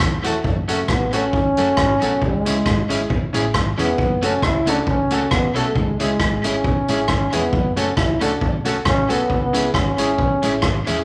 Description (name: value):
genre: ska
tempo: 136 BPM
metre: 4/4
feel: swing 55% on 8ths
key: F# minor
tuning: A4 = 440 Hz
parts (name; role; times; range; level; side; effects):
- semi-hollow electric guitar; riff; 0.0-11.0 s; E2 to C#3; -34 LUFS; equal; none
- hollow-body short-scale fingered electric bass; bass; 0.0-11.0 s; E1 to C#2; -31 LUFS; equal; none
- swinging big-band drum kit; drums; 0.0-11.0 s; hi-hat, kick drum, rim click; -24 LUFS; equal; none
- electric guitar at the edge of break-up; accompaniment; 0.2-11.0 s; E3 to A4; -30 LUFS; equal; tape echo
- clear upright piano; stabs; 0.2-11.0 s; C#4 to A4; -27 LUFS; equal; none
- mellow trombone; melody; 0.7-10.8 s; G#3 to E4; -23 LUFS; equal; none
room: wet large studio reverb, RT60 1.0 s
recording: none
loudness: -19 LUFS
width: mono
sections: 0.4-11.0 A section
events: none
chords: 0.4 F#m; 2.2 C#m; 4.0 F#m; 5.8 C#m; 7.5 F#m; 9.3 C#m